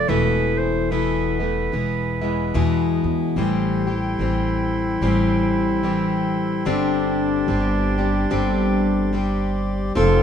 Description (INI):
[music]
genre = acoustic folk duo or small band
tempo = 73 BPM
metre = 4/4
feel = swing 60% on 8ths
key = A minor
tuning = A4 = 439 Hz
[part]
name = clear clarinet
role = second line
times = 0.0-10.2 s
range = D4 to D5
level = -26 LUFS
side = right 2 dB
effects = none
[part]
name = picked plugged-in steel-string acoustic guitar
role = accompaniment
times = 0.0-10.2 s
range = E2 to A4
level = -21 LUFS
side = left 2 dB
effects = none
[part]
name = upright bass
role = bass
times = 0.0-10.2 s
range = E1 to E2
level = -25 LUFS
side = equal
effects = none
[part]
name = pedal harmonium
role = sustained chords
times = 3.4-10.2 s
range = G4 to C6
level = -31 LUFS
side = left 1 dB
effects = none
[sound]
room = light reverb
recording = minimal, uncompressed stereo recording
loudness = -19 LUFS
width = side -8 dB against mid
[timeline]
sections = 0.0-3.4 A section; 3.4-10.2 B section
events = clarinet solo 0.0-3.4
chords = 0.1 Esus4; 1.7 E; 3.4 Am7; 6.7 Csus2/G